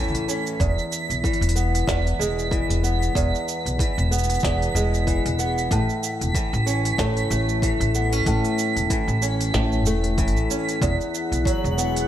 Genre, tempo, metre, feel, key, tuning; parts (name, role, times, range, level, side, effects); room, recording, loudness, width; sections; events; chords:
folktronica; 94 BPM; 4/4; swing 56% on 16ths; E major; A4 = 441 Hz
fingerpicked old ladder-braced acoustic guitar; arpeggios; 0.0-12.1 s; E2 to C#4; -24 LUFS; equal; low-pass filter, tape echo
upright bass; bass; 0.0-12.0 s; E1 to E2; -24 LUFS; equal
minimal click drum kit; drums; 0.0-12.1 s; hi-hat, shaker, snare drum; -30 LUFS; right 3 dB
twinkling granular texture; texture; 0.0-12.1 s; F#6 to B6; -30 LUFS; right 4 dB; built-in reverb
electronic kick drum; drums; 0.6-11.6 s; -26 LUFS; equal
warbly tape-like pad; sustained chords; 10.8-12.1 s; E4 to F#5; -29 LUFS; left 3 dB; chorus, built-in reverb
light reverb, digital ambience; -20 LUFS; side -11 dB against mid
0.0-12.1 A section
0.0 A; 0.6 E; 5.7 A; 10.8 Eadd9